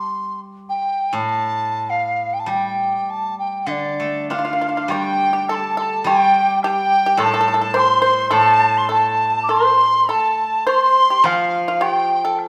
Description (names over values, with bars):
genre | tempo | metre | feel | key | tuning
chinese traditional, Chinese chamber ensemble | 96-107 BPM | 2/4 | rubato | unclear | A4 = 441 Hz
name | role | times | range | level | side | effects
large dizi | melody | 0.0-12.4 s | D5 to D6 | -20 LUFS | equal | none
steel-string zither | accompaniment | 0.0-12.5 s | A2 to D4 | -28 LUFS | equal | none
bright dizi | second line | 4.3-12.4 s | F5 to D6 | -24 LUFS | equal | none
pipa | second line | 4.3-12.4 s | F4 to C5 | -24 LUFS | equal | none
woodblock | percussion | 4.9-12.5 s | none | -32 LUFS | equal | none
room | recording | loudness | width
wet recital hall reverb, RT60 1.4 s | none | -18 LUFS | mono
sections
0.0-4.9 A section; 4.9-12.5 B section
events
none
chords
none